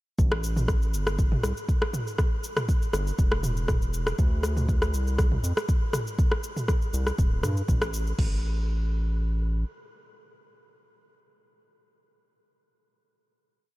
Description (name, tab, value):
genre	afro house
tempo	120 BPM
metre	4/4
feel	swing 54% on 16ths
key	A minor pentatonic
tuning	A4 = 440 Hz
part	round analog bass	bass	0.2-9.6 s	D1 to G2	-27 LUFS	equal	sidechain pumping
part	afro-pop drum kit	drums	0.2-8.3 s	crash cymbal, kick drum	-24 LUFS	equal	none
part	deep house drum kit	drums	0.2-8.2 s	cabasa, rim click, toms	-30 LUFS	equal	none
room	little or no reverb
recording	none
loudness	-24 LUFS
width	side -18 dB against mid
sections	0.2-8.2 drop; 8.2-12.2 final note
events	drop 0.2-8.2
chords	none